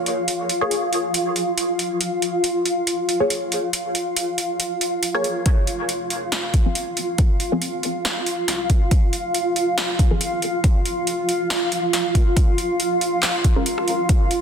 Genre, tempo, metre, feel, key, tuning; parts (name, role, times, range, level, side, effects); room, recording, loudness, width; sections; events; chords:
deep dubstep; 139 BPM; 4/4; swing 55% on 16ths, half-time; A4 = 441 Hz
granular cloud pad; sustained chords; 0.0-14.4 s; F4 to F5; -23 LUFS; equal; built-in reverb
deep house drum kit; drums; 0.1-14.4 s; handclaps, hi-hat, rim click, snare drum; -24 LUFS; right 1 dB; overdrive, high-pass filter on hats, studio ambience, high-pass filter on snare
filtered dub chord stab; stabs; 0.6-10.2, 13.6-13.7 s; F3 to Db5; -26 LUFS; left 1 dB; phaser, ensemble chorus, dub echo
soft dub sub bass; bass; 5.5-14.4 s; Eb1 to C2; -44 LUFS; left 1 dB
electronic kick drum; drums; 5.5-14.2 s; -17 LUFS; equal; overdrive, studio ambience
light reverb, digital ambience; dense, heavily limited modern master; -18 LUFS; side -7 dB against mid
0.0-5.5 A section; 5.5-14.4 B section
build-up 5.5-14.4; filter sweep on synth stab 5.5-14.4
0.0 N.C.; 12.4 Bb7(no3)